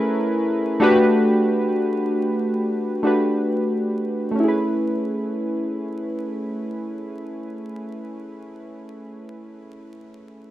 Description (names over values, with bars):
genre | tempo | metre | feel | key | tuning
hip hop | 67 BPM | 4/4 | swing 62% on 16ths | A major | A4 = 440 Hz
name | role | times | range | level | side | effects
warm analog keys | accompaniment | 0.0-10.5 s | A3 to B4 | -20 LUFS | equal | chorus, low-pass filter
room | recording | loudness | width
wet studio reverb, RT60 0.6 s | rough home demo mix, vinyl crackle | -19 LUFS | side -14 dB against mid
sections
0.0-4.4 A section; 4.4-8.0 B section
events
none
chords
0.0 Amaj9; 0.8 Gmaj7; 4.4 Amaj9